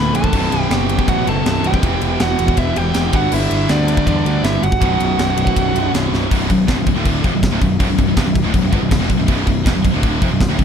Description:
heavy metal; 161 BPM; 4/4; straight; B minor; A4 = 445 Hz
high-gain lead guitar; melody; 0.0-5.9 s; D5 to B5; -22 LUFS; right 3 dB; distortion, ping-pong delay
high-gain lead guitar; second line; 0.0-5.9 s; D4 to B4; -26 LUFS; right 3 dB; distortion, ping-pong delay
heavy high-gain guitar; riff; 0.0-10.6 s; B1 to G3; -25 LUFS; equal; distortion
high-gain distorted guitar; riff; 0.0-10.6 s; B1 to G3; -22 LUFS; right 9 dB; distortion
scooped high-gain guitar; riff; 0.0-10.6 s; B1 to G3; -22 LUFS; left 10 dB; distortion
fuzz picked electric bass; bass; 0.0-10.6 s; B0 to E2; -20 LUFS; equal; overdrive
tight metal drum kit; drums; 0.1-10.6 s; crash cymbal, kick drum, ride cymbal, snare drum; -19 LUFS; equal
little or no reverb; dark, warm production; -14 LUFS; side -7 dB against mid
0.0-6.3 A section; 6.3-10.6 B section
drum fill 6.1
0.3 B5; 1.8 Em; 3.1 G5; 4.8 B5; 6.3 Bm
| 0.34 0.71 1.08 1.46 | 1.83 2.21 2.58 2.95 | 3.33 3.70 4.07 4.45 | 4.82 5.19 5.56 5.93 | 6.31 6.68 7.05 7.42 | 7.79 8.17 8.54 8.91 | 9.28 9.65 10.03 10.40

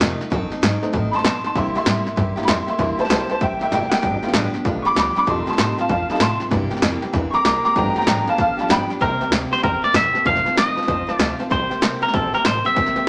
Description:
rockabilly; 193 BPM; 4/4; swing 64% on 8ths; C mixolydian; A4 = 436 Hz
picked steel-string acoustic guitar; accompaniment; 0.0-13.1 s; F2 to A4; -29 LUFS; equal
upright bass; bass; 0.0-13.0 s; F#1 to C3; -30 LUFS; equal
punchy analog drum machine; drums; 0.0-13.0 s; hi-hat, kick drum, snare drum; -24 LUFS; equal
honky-tonk upright piano; accompaniment; 0.8-13.1 s; E3 to D6; -24 LUFS; equal
twangy electric guitar; melody; 9.0-13.1 s; A4 to F5; -22 LUFS; equal
wet studio reverb, RT60 0.7 s; -19 LUFS; mono
0.0-9.0 A section; 9.0-13.1 B section
honky-tonk piano solo 0.0-9.0; drum fill 3.7-4.0
0.3 F#dim7; 1.6 C7; 4.0 G7; 5.3 F7; 6.5 C7; 7.8 G7; 9.0 C7; 10.3 F7; 11.5 C7
0.01 | 0.32 0.63 0.94 1.25 | 1.55 1.86 2.17 2.48 | 2.79 3.10 3.41 3.72 | 4.03 4.34 4.65 4.96 | 5.27 5.58 5.89 6.21 | 6.51 6.83 7.14 7.45 | 7.76 8.07 8.38 8.69 | 9.01 9.32 9.63 9.94 | 10.26 10.57 10.88 11.20 | 11.51 11.82 12.13 12.45 | 12.76 13.07

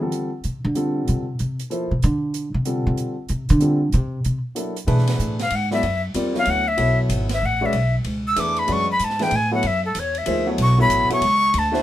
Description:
modal jazz; 189 BPM; 3/4; swing 64% on 8ths; G dorian, B dorian from 4.9 s; A4 = 440 Hz
warm concert grand piano; accompaniment; 0.0-11.8 s; D3 to D5; -25 LUFS; left 1 dB
upright bass; bass; 0.0-11.8 s; G#1 to D3; -21 LUFS; equal
open jazz drum kit; drums; 0.1-11.8 s; hi-hat, ride cymbal, snare drum; -33 LUFS; right 1 dB
breathy bright jazz flute; melody; 5.4-11.8 s; A4 to E6; -20 LUFS; left 1 dB
light reverb; minimal, uncompressed stereo recording; -18 LUFS; side -13 dB against mid
0.0-4.9 A section; 4.9-11.8 A section
upright bass solo 0.0-4.9; flute solo 4.9-11.8
0.0 G9sus4; 3.9 F#7alt; 4.9 Bm11
| 0.12 0.44 0.76 | 1.07 1.39 1.71 | 2.02 2.34 2.66 | 2.98 3.29 3.61 | 3.93 4.24 4.56 | 4.88 5.19 5.51 | 5.83 6.14 6.46 | 6.78 7.10 7.41 | 7.73 8.05 8.36 | 8.68 9.00 9.31 | 9.63 9.95 10.27 | 10.58 10.90 11.21 | 11.53

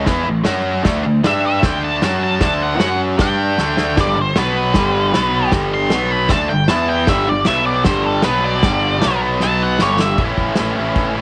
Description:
garage rock duo or trio; 154 BPM; 4/4; straight; A4 = 443 Hz
overdriven electric guitar; riff; 0.0-11.2 s; G2 to G4; -20 LUFS; equal
fuzz picked electric bass; bass; 0.0-11.2 s; G1 to G2; -26 LUFS; equal; overdrive, tube saturation
vintage drum kit; drums; 0.1-11.1 s; crash cymbal, kick drum, snare drum; -23 LUFS; equal
octave-fuzz lead guitar; melody; 1.3-10.2 s; A4 to C6; -22 LUFS; equal; distortion
small room reverb; -16 LUFS; mono
0.0-10.2 A section; 10.2-11.2 B section
lead electric guitar solo 0.0-10.2; drum fill 3.6-4.0, 9.4-10.2
0.1 A5; 0.5 F#5; 0.9 D5; 1.2 G5; 1.6 D5; 2.0 F#5; 2.4 D5; 2.8 F#5; 3.2 G5; 3.6 D5; 4.0 G5; 4.4 B5; 4.8 G5; 5.1 B5; 5.5 G5; 5.9 B5; 6.3 G5; 6.7 E5; 7.1 G5; 7.5 B5; 7.9 G5; 8.3 B5; 8.6 G5; 9.0 B5; 9.8 G5; 10.2 A
0.08 0.47 | 0.86 1.25 1.64 2.03 | 2.42 2.81 3.20 3.59 | 3.98 4.37 4.76 5.15 | 5.54 5.93 6.32 6.70 | 7.09 7.48 7.87 8.26 | 8.64 9.03 9.42 9.80 | 10.19 10.58 10.97

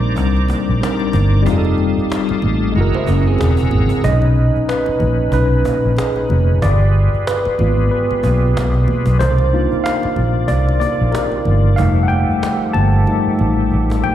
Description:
R&B, neo-soul; 93 BPM; 4/4; swing 57% on 16ths; A4 = 440 Hz
tine electric piano; accompaniment; 0.0-14.1 s; A#2 to A5; -18 LUFS; left 1 dB; medium stereo tremolo, slapback echo
bright tonewheel organ; sustained chords; 0.0-14.1 s; C3 to Fb6; -26 LUFS; equal; fast rotary speaker, overdrive, chorus vibrato
vintage muted fingered electric bass; bass; 0.0-14.0 s; Fb1 to C2; -15 LUFS; equal
cajon; drums; 0.2-14.1 s; -27 LUFS; equal; slapback echo
congas; percussion; 0.2-14.1 s; -28 LUFS; equal; slapback echo
electric guitar through a small old amp; second line; 3.0-4.0 s; C4 to C5; -21 LUFS; right 7 dB; slapback echo
light reverb; live gig heard through the venue's PA, recital hall reverb; -13 LUFS; side -11 dB against mid
0.0-4.0 A section; 4.0-14.1 B section
tine electric piano solo 4.0-14.1; drum fill 13.1-14.1
0.0 Cm9; 1.5 F9; 2.8 Gb9; 4.0 Bmaj9; 6.6 G7b9; 9.2 Cm11; 11.8 F9
0.17 0.81 | 1.46 2.10 2.75 3.40 | 4.04 4.68 5.33 5.98 | 6.62 7.27 7.91 8.56 | 9.20 9.85 10.49 11.14 | 11.78 12.43 13.07 13.72

